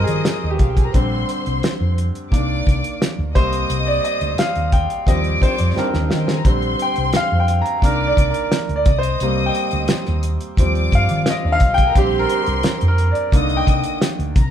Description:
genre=lush 1970s-style soul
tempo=87 BPM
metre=4/4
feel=straight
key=unclear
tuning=A4 = 440 Hz
part: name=warm studio string section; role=second line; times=0.0-14.5 s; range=D4 to Eb6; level=-26 LUFS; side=left 1 dB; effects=none
part: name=clear grand piano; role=accompaniment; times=0.0-14.4 s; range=D3 to Bb5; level=-21 LUFS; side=equal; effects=none
part: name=hollow-body short-scale fingered electric bass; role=bass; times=0.0-14.5 s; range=Bb1 to Eb3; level=-21 LUFS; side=equal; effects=none
part: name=cloth-damped thuddy drum kit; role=drums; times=0.1-14.5 s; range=hi-hat, kick drum, snare drum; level=-18 LUFS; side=equal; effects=none
part: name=warm trombone section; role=stabs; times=5.1-6.4 s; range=G2 to C4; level=-25 LUFS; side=equal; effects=none
room=moderate studio reverb, RT60 0.8 s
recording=band playing live in one room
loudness=-16 LUFS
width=side -9 dB against mid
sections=0.0-14.5 A section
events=grand piano solo 0.0-14.5; band accent 3.7-6.5; drum fill 5.8-6.5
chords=0.0 Eb6; 0.9 Bb69; 2.3 Cm9; 3.4 Cm11; 5.1 Eb6; 6.5 Bb69; 7.8 Cm9; 10.6 Eb6; 12.0 Bb69; 13.3 Cm9

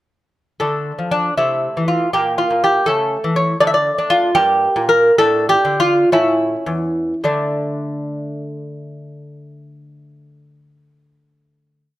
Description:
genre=classical, baroque-style dance for lute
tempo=51-84 BPM (dotted quarters)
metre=6/8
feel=rubato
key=D minor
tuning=A4 = 440 Hz
part: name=lute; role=solo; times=0.6-12.0 s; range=E2 to E5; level=-15 LUFS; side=equal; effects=none
room=light reverb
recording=close, detailed microphones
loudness=-14 LUFS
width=side -14 dB against mid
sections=0.6-7.2 A section; 7.2-11.8 final chord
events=slowing down 2.9-7.2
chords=0.6 Dm; 1.4 Am/C; 2.1 N.C.; 2.9 A/C#; 3.6 D5; 4.4 Gm; 5.2 D5/A; 6.1 A; 7.2 D5

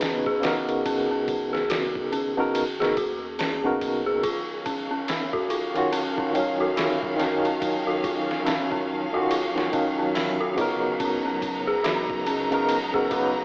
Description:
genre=trip hop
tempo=71 BPM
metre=4/4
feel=swing 60% on 16ths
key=Eb minor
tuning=A4 = 440 Hz
part: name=barky tine electric piano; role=accompaniment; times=0.0-13.4 s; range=Db3 to F5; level=-26 LUFS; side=equal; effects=tremolo, cassette tape, tape echo
part: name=dark detuned synth bell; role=arpeggios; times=0.0-13.4 s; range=Db4 to Ab4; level=-27 LUFS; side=equal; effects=chorus, cassette tape, tape echo
part: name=trip hop sampler-style drum kit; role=drums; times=0.0-13.4 s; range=hi-hat, kick drum, ride cymbal, snare drum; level=-32 LUFS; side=equal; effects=overdrive
part: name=warm sub bass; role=bass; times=0.9-13.4 s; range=Eb1 to Eb2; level=-50 LUFS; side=equal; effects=none
part: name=clear studio string section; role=sustained chords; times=4.2-13.4 s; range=Db3 to Bb5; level=-30 LUFS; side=equal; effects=vintage 12-bit sampler grit, cassette tape
part: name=tabla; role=percussion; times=5.1-12.0 s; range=none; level=-35 LUFS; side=equal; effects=none
room=moderate spring reverb, RT60 2.6 s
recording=home recording on cassette, vinyl crackle, AM radio sound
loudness=-22 LUFS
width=side -32 dB against mid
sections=0.0-13.4 A section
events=none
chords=0.0 Db13sus4; 4.2 Ebm9; 11.0 Db13sus4

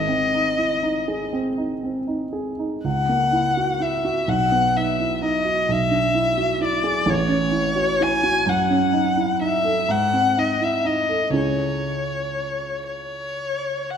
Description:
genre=classical, romantic duo for violin and grand piano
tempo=42 BPM (dotted quarters)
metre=6/8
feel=uneven beats, rubato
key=C# minor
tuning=A4 = 443 Hz
part: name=warm violin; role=melody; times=0.0-14.0 s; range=C#5 to G#5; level=-21 LUFS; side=left 3 dB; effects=none
part: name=warm grand piano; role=accompaniment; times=0.0-14.0 s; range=G#1 to A4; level=-23 LUFS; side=right 2 dB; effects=none
room=wet scoring stage reverb, RT60 1.9 s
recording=none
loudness=-19 LUFS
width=side -8 dB against mid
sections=0.0-14.0 A section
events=none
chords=0.0 G#; 2.9 F#7/C#; 4.3 B; 5.7 E7/B; 7.1 A6; 8.5 D#m7b5/F#; 9.9 G#; 11.4 C#m

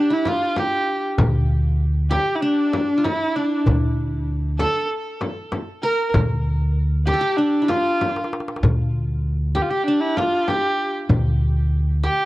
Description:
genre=Turkish makam ensemble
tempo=97 BPM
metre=4/4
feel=straight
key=D makam ussak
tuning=A4 = 440 Hz
part: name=clear kamancheh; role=melody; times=0.0-12.3 s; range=D4 to Bb4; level=-21 LUFS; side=equal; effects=tape echo
part: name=qanun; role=second line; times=0.0-12.3 s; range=D4 to Bb4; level=-27 LUFS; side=equal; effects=none
part: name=darbuka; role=percussion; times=0.3-12.2 s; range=none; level=-24 LUFS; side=left 1 dB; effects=none
part: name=frame drum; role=percussion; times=0.3-11.2 s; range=none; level=-24 LUFS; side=left 1 dB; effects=none
part: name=upright bass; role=bass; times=1.2-12.1 s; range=D2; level=-20 LUFS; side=equal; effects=none
room=moderate small room ambience, RT60 0.5 s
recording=cassette tape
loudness=-18 LUFS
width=side -17 dB against mid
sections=0.0-12.3 A section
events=drum fill 8.0-8.6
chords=none

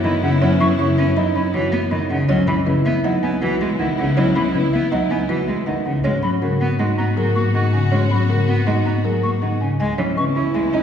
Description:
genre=classical, minimalist pattern music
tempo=160 BPM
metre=5/4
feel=straight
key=C# dorian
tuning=A4 = 440 Hz
part: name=marimba with medium mallets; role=melody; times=0.0-10.8 s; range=A#4 to B5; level=-28 LUFS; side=left 4 dB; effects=none
part: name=clear clarinet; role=second line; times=0.0-10.8 s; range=E4 to F#4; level=-27 LUFS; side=right 2 dB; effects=none
part: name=warm cello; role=accompaniment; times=0.0-10.8 s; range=C#3 to C#4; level=-20 LUFS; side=equal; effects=none
part: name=rich chamber string section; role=sustained chords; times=0.0-10.8 s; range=B3 to F#4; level=-29 LUFS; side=left 3 dB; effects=none
part: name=dark grand piano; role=arpeggios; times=0.0-10.8 s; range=C#4 to G#4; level=-24 LUFS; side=right 3 dB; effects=none
part: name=warm double bass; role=bass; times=0.0-10.8 s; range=C#2 to G#2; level=-23 LUFS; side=left 1 dB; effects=none
part: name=mellow hollow silver concert flute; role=arpeggios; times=0.2-10.6 s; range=E5 to C#6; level=-29 LUFS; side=left 1 dB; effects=none
room=wet recital hall reverb, RT60 1.8 s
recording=heard from further back in the room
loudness=-16 LUFS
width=side -8 dB against mid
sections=0.0-9.8 A section; 9.8-10.8 B section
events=none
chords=0.0 F#7sus4; 2.3 C#m9; 6.0 G#m11; 9.8 C#m7

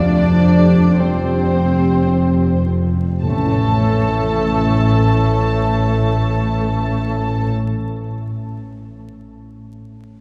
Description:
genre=cinematic, emotional film score for orchestra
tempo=51-58 BPM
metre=3/4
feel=rubato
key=unclear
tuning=A4 = 442 Hz
part: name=rich studio violin section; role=melody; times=0.0-7.5 s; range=C5 to A5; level=-34 LUFS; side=equal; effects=none
part: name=warm duduk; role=melody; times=0.0-7.5 s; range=A3 to D4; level=-28 LUFS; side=equal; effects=none
part: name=clear clarinet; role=second line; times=0.0-7.5 s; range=F3 to A4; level=-27 LUFS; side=equal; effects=none
part: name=small flute group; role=second line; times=0.0-7.5 s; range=C5 to A5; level=-30 LUFS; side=equal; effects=none
part: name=warm studio violin section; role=second line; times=0.0-7.5 s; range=C5 to A5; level=-32 LUFS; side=equal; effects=none
part: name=dark grand piano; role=accompaniment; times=0.0-10.2 s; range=F2 to C#5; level=-25 LUFS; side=equal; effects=none
part: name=warm studio viola section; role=accompaniment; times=0.0-7.5 s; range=C4 to A4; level=-29 LUFS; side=equal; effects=none
part: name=dark French horn section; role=sustained chords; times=0.0-7.5 s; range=E3 to G4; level=-28 LUFS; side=equal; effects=none
part: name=dark studio double bass section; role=bass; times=0.0-7.5 s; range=F1 to A1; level=-25 LUFS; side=equal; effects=none
part: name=warm studio cello section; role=bass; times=0.0-7.5 s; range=F2 to A2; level=-22 LUFS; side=equal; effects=none
part: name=timpani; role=percussion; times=3.2-7.9 s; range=none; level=barely audible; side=none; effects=none
room=wet cathedral reverb, RT60 5.0 s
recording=recorded in a church or concert hall, vinyl crackle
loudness=-16 LUFS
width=mono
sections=0.0-3.2 A section; 3.2-6.7 B section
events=slowing down 0.0-3.2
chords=0.0 Fsus2; 3.2 A

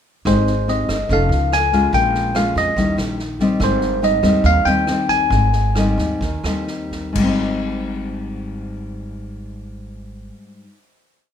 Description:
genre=bossa nova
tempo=122-144 BPM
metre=4/4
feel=straight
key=Ab major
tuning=A4 = 440 Hz
part: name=bell-like tine electric piano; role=melody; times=0.3-6.6 s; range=C5 to G#5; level=-19 LUFS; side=left 1 dB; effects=phaser
part: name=nylon-string guitar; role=accompaniment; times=0.3-10.8 s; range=Ab2 to A4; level=-21 LUFS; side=left 2 dB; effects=none
part: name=upright bass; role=bass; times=0.3-10.3 s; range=F1 to F2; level=-23 LUFS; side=right 1 dB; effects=none
part: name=swinging big-band drum kit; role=drums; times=0.3-7.3 s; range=crash cymbal, kick drum, rim click, snare drum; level=-28 LUFS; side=right 2 dB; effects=none
room=light reverb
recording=minimal, uncompressed stereo recording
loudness=-16 LUFS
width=side -8 dB against mid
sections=0.3-7.2 A section; 7.2-11.1 final chord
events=slowing down 3.6-7.2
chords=0.3 Abmaj7; 1.1 F7alt; 1.9 Bbm7; 2.8 Eb7b9; 3.6 Abmaj7

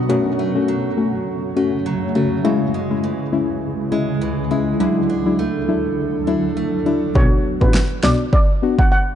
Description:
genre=dancehall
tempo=102 BPM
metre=4/4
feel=swing 56% on 16ths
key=unclear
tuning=A4 = 444 Hz
part: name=granular cloud pad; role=sustained chords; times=0.0-7.1 s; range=C#2 to C#5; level=-23 LUFS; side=right 1 dB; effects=built-in reverb, sidechain pumping
part: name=picked steel-string acoustic guitar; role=arpeggios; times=0.0-7.7 s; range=F#2 to D4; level=-26 LUFS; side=right 4 dB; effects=tape echo
part: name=deep mellow chord stab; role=accompaniment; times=0.1-8.8 s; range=F#3 to F#4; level=-20 LUFS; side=left 4 dB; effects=chorus
part: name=steel pan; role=melody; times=7.2-9.1 s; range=B4 to F#5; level=-22 LUFS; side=right 1 dB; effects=tape echo
part: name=bright double bass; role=bass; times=7.2-8.1 s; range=A1 to B1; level=-21 LUFS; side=equal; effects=none
part: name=deep house drum kit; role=drums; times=7.2-8.9 s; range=kick drum, snare drum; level=-16 LUFS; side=equal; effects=none
room=moderate lush hall reverb, RT60 2.8 s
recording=dark, warm production, nothing above 10.9 kHz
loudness=-16 LUFS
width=side -10 dB against mid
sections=0.0-7.2 A section; 7.2-9.2 B section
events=hi-hats muted 7.2-9.2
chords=0.1 F#m; 2.4 C#m; 4.8 Dadd9; 7.2 Bm

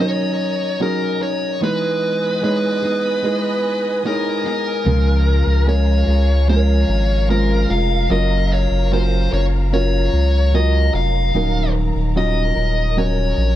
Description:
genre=pop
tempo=74 BPM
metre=4/4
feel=straight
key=unclear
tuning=A4 = 440 Hz
part: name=smooth overdriven lead guitar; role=melody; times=0.0-13.6 s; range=Bb4 to F5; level=-21 LUFS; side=left 2 dB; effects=none
part: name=felt-muted upright piano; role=accompaniment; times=0.0-13.6 s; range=Db3 to Db5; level=-23 LUFS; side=right 4 dB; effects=none
part: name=warm studio string section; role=sustained chords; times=0.0-13.6 s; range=B3 to D#6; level=-31 LUFS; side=left 1 dB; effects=none
part: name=nylon-string guitar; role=arpeggios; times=0.0-13.6 s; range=Db3 to Bb4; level=-27 LUFS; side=left 3 dB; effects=digital delay
part: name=saturated sub bass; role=bass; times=4.9-13.6 s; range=Eb1 to Db2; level=-16 LUFS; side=equal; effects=none
room=small room reverb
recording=dark, warm production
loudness=-15 LUFS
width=side -13 dB against mid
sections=0.0-13.6 A section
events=none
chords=0.0 Ebm7; 1.6 Emaj7; 4.9 Db6; 8.1 Gbmaj7; 11.3 Ebm7

